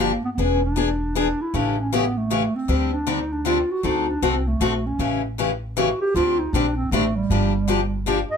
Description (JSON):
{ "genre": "acoustic string swing (jazz manouche)", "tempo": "156 BPM", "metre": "3/4", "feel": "swing 62% on 8ths", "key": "unclear", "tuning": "A4 = 441 Hz", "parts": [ { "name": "breathy clarinet", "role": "melody", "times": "0.0-8.4 s", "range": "G3 to Eb5", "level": "-23 LUFS", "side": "right 2 dB", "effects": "slapback echo, plate reverb" }, { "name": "picked steel-string acoustic guitar", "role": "accompaniment", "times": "0.0-8.2 s", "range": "C#3 to A4", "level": "-23 LUFS", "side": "left 5 dB", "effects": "none" }, { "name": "upright bass", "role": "bass", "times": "0.0-8.2 s", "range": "E1 to D2", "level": "-26 LUFS", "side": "equal", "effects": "none" } ], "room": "moderate studio ambience, RT60 0.5 s", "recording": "close, detailed microphones", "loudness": "-19 LUFS", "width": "side -6 dB against mid", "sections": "0.0-8.4 A section", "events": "none", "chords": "0.4 E7; 1.5 A7; 2.7 D7sus4; 3.8 D7; 5.0 A7; 6.1 D7sus4; 7.3 Gm7" }